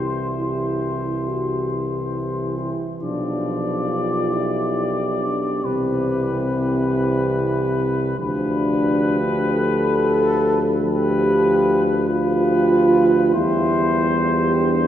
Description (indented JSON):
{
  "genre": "classical, hymn-like piece for brass band",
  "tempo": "47 BPM (dotted quarters)",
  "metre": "12/8",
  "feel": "rubato",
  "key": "unclear",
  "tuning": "A4 = 441 Hz",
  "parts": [
    { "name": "warm flugelhorn", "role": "melody", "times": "0.0-14.9 s", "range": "B4 to D5", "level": "-26 LUFS", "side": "left 4 dB", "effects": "none" },
    { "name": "dark French horn section", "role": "second line", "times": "0.0-14.9 s", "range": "G4", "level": "-26 LUFS", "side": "right 4 dB", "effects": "none" },
    { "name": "dark euphonium", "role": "accompaniment", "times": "0.0-14.9 s", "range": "C4 to A4", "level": "-22 LUFS", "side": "equal", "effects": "none" },
    { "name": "warm trombone", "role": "accompaniment", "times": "0.0-14.9 s", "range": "E3 to G3", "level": "-30 LUFS", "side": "right 2 dB", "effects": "none" },
    { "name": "warm tuba", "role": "bass", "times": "0.0-14.9 s", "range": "B1 to E2", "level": "-23 LUFS", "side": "equal", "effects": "none" }
  ],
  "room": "wet cathedral reverb, RT60 4.8 s",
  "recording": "heard from further back in the room",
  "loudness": "-18 LUFS",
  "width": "side -10 dB against mid",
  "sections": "0.0-14.9 A section",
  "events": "none",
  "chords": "0.0 C; 3.0 G7/B; 5.6 Cmaj7; 8.2 G7/D; 13.3 C/E",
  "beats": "0.41 1.73 | 3.03 4.32 5.65 6.93 | 8.19 9.54 10.83 12.10 | 13.35 14.60"
}